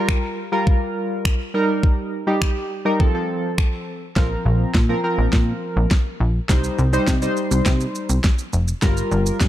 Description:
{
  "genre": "dance-pop",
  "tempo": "103 BPM",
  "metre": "4/4",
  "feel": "straight",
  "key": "unclear",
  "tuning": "A4 = 439 Hz",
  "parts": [
    { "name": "chorused retro synth keys", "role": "accompaniment", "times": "0.0-9.4 s", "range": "F3 to C5", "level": "-22 LUFS", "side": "equal", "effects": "tremolo, sidechain pumping" },
    { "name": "pop drum kit", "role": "drums", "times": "0.1-9.5 s", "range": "finger snaps, kick drum, shaker, snare drum", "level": "-20 LUFS", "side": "equal", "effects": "none" },
    { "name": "plucky analog bass", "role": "bass", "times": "4.2-9.5 s", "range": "F1 to C3", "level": "-20 LUFS", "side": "equal", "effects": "sidechain pumping" }
  ],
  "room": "light reverb",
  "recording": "dark, warm production",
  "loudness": "-18 LUFS",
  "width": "side -13 dB against mid",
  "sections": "0.0-4.2 A section; 4.2-9.5 B section",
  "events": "build-up 4.2-9.5; drum fill 4.2-9.5",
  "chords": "0.0 Gm7; 1.5 Eb; 3.0 F; 4.2 Bbsus2; 6.5 Cm; 8.8 Gm7"
}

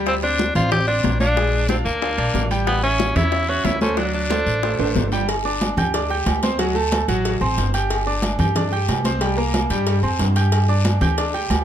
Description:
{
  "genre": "latin, salsa",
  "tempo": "184 BPM",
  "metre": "4/4",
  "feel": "straight",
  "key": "G minor",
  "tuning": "A4 = 440 Hz",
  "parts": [
    { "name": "bright grand piano", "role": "accompaniment", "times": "0.0-11.6 s", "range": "F#3 to G6", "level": "-24 LUFS", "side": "right 1 dB", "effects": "none" },
    { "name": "upright bass", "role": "bass", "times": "0.0-11.6 s", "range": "G1 to G2", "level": "-22 LUFS", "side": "equal", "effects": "none" },
    { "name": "bright tenor saxophone", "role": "melody", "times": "0.1-5.1 s", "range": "Bb3 to G4", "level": "-22 LUFS", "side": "equal", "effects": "none" },
    { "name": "bongos and cowbell", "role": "percussion", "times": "0.1-11.6 s", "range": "none", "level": "-28 LUFS", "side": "left 6 dB", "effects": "none" },
    { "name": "congas", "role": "percussion", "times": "0.1-11.6 s", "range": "none", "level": "-26 LUFS", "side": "equal", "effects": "none" },
    { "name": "guiro", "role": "percussion", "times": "0.1-11.6 s", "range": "none", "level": "-34 LUFS", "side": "left 6 dB", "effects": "none" },
    { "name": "timbales and agogo bells", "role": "percussion", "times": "0.1-11.6 s", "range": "none", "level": "-28 LUFS", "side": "right 5 dB", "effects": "none" }
  ],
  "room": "light reverb",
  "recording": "close, detailed microphones",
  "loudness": "-17 LUFS",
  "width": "side -10 dB against mid",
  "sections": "0.0-5.3 A section; 5.3-11.6 B section",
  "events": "drum fill 4.8-5.3",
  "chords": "0.1 D7sus4; 1.4 Bb7; 2.7 A7; 4.0 D7; 5.3 G5; 6.6 D7; 7.9 G5; 9.2 C5; 10.5 G5"
}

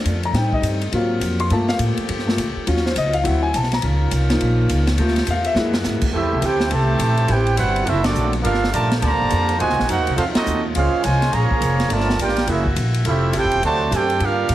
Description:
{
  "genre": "jazz, big band swing",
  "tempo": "208 BPM",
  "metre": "4/4",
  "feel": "swing 62% on 8ths",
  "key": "F major",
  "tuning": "A4 = 444 Hz",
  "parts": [
    { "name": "warm baby grand piano", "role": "accompaniment", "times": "0.0-6.0 s", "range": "F3 to C6", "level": "-21 LUFS", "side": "left 2 dB", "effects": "none" },
    { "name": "clear saxophone section", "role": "sustained chords", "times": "0.0-14.5 s", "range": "Bb2 to A4", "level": "-30 LUFS", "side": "equal", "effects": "none" },
    { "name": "upright bass", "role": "bass", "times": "0.0-14.5 s", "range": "E1 to Bb2", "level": "-21 LUFS", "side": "equal", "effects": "none" },
    { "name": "swinging big-band drum kit", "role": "drums", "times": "0.1-14.5 s", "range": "crash cymbal, hi-hat, kick drum, ride cymbal, snare drum", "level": "-25 LUFS", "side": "equal", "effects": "none" },
    { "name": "warm trumpet section", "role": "melody", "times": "6.1-14.5 s", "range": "C4 to Bb5", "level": "-21 LUFS", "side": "right 2 dB", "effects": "none" },
    { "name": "mellow trombone section", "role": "second line", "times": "6.1-14.5 s", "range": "Bb2 to G4", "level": "-24 LUFS", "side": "right 3 dB", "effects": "none" }
  ],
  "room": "moderate large studio reverb, RT60 1.4 s",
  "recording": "heavily compressed radio sound",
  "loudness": "-16 LUFS",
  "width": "side -13 dB against mid",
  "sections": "0.0-6.1 A section; 6.1-14.5 B section",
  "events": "grand piano solo 0.0-6.1; drum fill 5.6; band accent 8.0, 10.3",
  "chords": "0.4 Am7b5; 0.9 Ab13; 1.5 Gm9; 2.7 Ebm9; 3.2 D9; 3.8 Db69; 5.0 Gm9; 5.6 Gb9; 6.1 Fmaj9 (rootless); 7.3 Am11; 7.9 D7b13; 8.4 Gm9; 9.6 Cm7b5; 10.2 F7b9; 10.8 Bbm9; 11.9 Gm9; 12.5 Gb9; 13.1 Fmaj9; 13.6 D7"
}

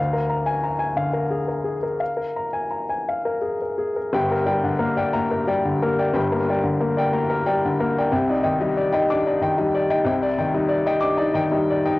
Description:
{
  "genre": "neoclassical minimalist piano",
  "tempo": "55-63 BPM (dotted quarters)",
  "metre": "6/8",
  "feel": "rubato",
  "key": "unclear",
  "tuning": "A4 = 438 Hz",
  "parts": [
    { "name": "warm baby grand piano", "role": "solo", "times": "0.0-12.0 s", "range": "G1 to D6", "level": "-20 LUFS", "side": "left 1 dB", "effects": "cassette tape" }
  ],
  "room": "moderate spring reverb, RT60 1.7 s",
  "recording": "home recording on cassette",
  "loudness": "-20 LUFS",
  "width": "side -19 dB against mid",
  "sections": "0.0-4.1 A section; 4.1-12.0 B section",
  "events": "none",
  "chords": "0.0 Bb7/D; 4.1 Gm; 8.1 Cmadd9"
}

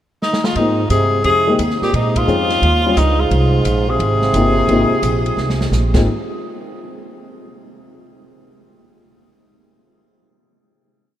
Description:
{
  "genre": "jazz, small-group swing and bop",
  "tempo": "175 BPM",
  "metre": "4/4",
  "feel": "swing 65% on 8ths",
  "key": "Ab major",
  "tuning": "A4 = 443 Hz",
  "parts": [
    { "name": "clear tenor saxophone", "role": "melody", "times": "0.2-5.7 s", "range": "Eb4 to Ab4", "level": "-18 LUFS", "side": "left 1 dB", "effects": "none" },
    { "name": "open jazz drum kit", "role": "drums", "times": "0.2-6.0 s", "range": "crash cymbal, hi-hat, kick drum, ride cymbal, snare drum", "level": "-25 LUFS", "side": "equal", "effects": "none" },
    { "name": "breathy trombone", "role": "second line", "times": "0.6-5.7 s", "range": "G2 to C3", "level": "-22 LUFS", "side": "right 2 dB", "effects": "none" },
    { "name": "dark baby grand piano", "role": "accompaniment", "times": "0.6-6.1 s", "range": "G3 to G4", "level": "-22 LUFS", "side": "left 3 dB", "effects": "none" },
    { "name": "upright bass", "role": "bass", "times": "0.6-6.1 s", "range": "G1 to Bb2", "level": "-18 LUFS", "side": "equal", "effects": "none" }
  ],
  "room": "wet cathedral reverb, RT60 5.1 s",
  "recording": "in a vast, echoing space",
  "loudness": "-13 LUFS",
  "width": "side -12 dB against mid",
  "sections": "0.0-0.6 pickup bar; 0.6-6.1 A section; 6.1-7.4 final hit",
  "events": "drum fill 0.2-0.6, 5.4-5.7; band accent 2.1",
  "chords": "0.0 N.C.; 0.6 Ab69; 1.3 Fm11; 1.9 Bbm9; 2.6 Eb13; 3.3 Ab69; 6.1 N.C."
}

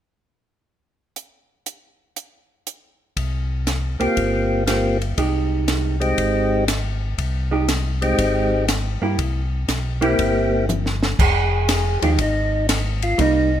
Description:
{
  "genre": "soul jazz organ trio",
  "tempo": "120 BPM",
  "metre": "4/4",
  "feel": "swing 67% on 8ths",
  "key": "F minor",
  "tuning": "A4 = 436 Hz",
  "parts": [
    { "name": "compact cocktail drum kit", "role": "drums", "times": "1.2-13.3 s", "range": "crash cymbal, hi-hat, kick drum, ride cymbal, snare drum, toms", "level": "-24 LUFS", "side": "equal", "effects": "none" },
    { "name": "mellow tonewheel organ", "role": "bass", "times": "3.2-13.6 s", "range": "F1 to G2", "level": "-22 LUFS", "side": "left 1 dB", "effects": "chorus vibrato, slow rotary speaker" },
    { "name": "percussive tonewheel organ", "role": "melody", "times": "4.0-13.6 s", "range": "Ab3 to Ab4", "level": "-21 LUFS", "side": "equal", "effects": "slow rotary speaker" },
    { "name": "vintage hollow-body jazz guitar", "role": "accompaniment", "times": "4.0-13.5 s", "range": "F3 to G4", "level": "-23 LUFS", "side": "right 6 dB", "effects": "none" }
  ],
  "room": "moderate large studio reverb, RT60 1.3 s",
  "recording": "minimal, uncompressed stereo recording",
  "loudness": "-18 LUFS",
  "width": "side -10 dB against mid",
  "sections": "1.2-3.2 A section; 3.2-11.2 B section; 11.2-13.6 C section",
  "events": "drum fill 10.7-11.2",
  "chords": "1.2 N.C.; 3.2 C7sus4; 5.2 Abmaj7; 9.2 C7; 11.2 Fm7"
}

